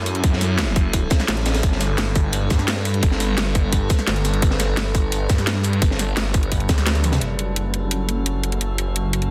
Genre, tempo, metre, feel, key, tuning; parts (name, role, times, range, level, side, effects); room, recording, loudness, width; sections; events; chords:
dark technical drum and bass; 172 BPM; 4/4; straight; F# phrygian; A4 = 440 Hz
metallic inharmonic drone; sustained chords; 0.0-9.3 s; F#3 to B4; -31 LUFS; equal; chorus, built-in reverb, vintage 12-bit sampler grit, sidechain pumping
phased detuned saw bass; bass; 0.0-9.3 s; F#1 to G2; -24 LUFS; equal; phaser, overdrive
crunchy breakbeat drum kit; drums; 0.1-7.2 s; hi-hat, snare drum; -32 LUFS; equal; high-pass filter on hats, high-pass filter on snare, high-pass filter on room
drum and bass drum kit; drums; 0.1-9.3 s; hi-hat, shaker, snare drum, toms; -27 LUFS; equal; overdrive
electronic kick drum; drums; 0.2-6.8 s; -21 LUFS; equal; overdrive
light reverb, digital ambience; dense, heavily limited modern master; -20 LUFS; mono
0.0-7.2 A section; 7.2-9.3 B section
drop 0.0-7.2; band accent 6.9; drum fill 7.0
0.0 F#m; 1.6 G; 7.2 F#m